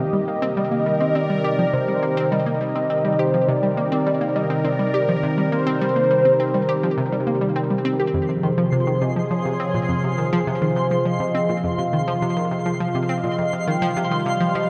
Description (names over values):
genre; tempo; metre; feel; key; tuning
ambient, sequencer-driven space music; 103 BPM; 4/4; straight; F minor from 8.1 s; A4 = 439 Hz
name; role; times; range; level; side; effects
mellow horn-like synth lead; melody; 0.0-14.7 s; C5 to G5; -26 LUFS; equal; ensemble chorus, delay
sweeping resonant pad; sustained chords; 0.0-14.7 s; C3 to F5; -25 LUFS; equal; chorus
analog pluck; riff; 0.0-14.6 s; F2 to G4; -27 LUFS; equal; chorus, delay
twinkling granular texture; texture; 8.3-14.7 s; C6; -34 LUFS; equal; built-in reverb
room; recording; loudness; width
wet cathedral reverb, RT60 4.8 s; in a vast, echoing space; -21 LUFS; mono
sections
0.0-8.1 A section; 8.1-14.7 B section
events
filter sweep on synth arpeggio sound 0.0-8.1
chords
0.0 Cm7; 8.1 Fm